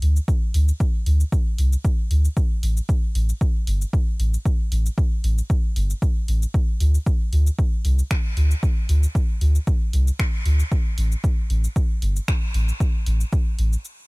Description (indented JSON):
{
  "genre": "dub techno",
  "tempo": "115 BPM",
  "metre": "4/4",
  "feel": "swing 54% on 16ths",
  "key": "unclear",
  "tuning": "A4 = 441 Hz",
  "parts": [
    { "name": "soft dub sub bass", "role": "bass", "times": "0.0-13.8 s", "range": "G1 to D2", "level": "-18 LUFS", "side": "equal", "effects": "tube saturation, sidechain pumping" },
    { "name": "punchy analog drum machine", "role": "drums", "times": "0.0-14.0 s", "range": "finger snaps, hi-hat, shaker", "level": "-35 LUFS", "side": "equal", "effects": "overdrive" },
    { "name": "electronic kick drum", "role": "drums", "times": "0.3-13.4 s", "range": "none", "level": "-21 LUFS", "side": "equal", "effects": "overdrive" }
  ],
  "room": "little or no reverb",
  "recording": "none",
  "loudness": "-19 LUFS",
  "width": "side -27 dB against mid",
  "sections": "0.0-14.1 A section",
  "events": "break 13.8",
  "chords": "none",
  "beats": "| 0.28 0.80 1.32 1.85 | 2.37 2.89 3.41 3.93 | 4.46 4.98 5.50 6.02 | 6.54 7.06 7.59 8.11 | 8.63 9.15 9.67 10.20 | 10.72 11.24 11.76 12.28 | 12.80 13.32 13.85"
}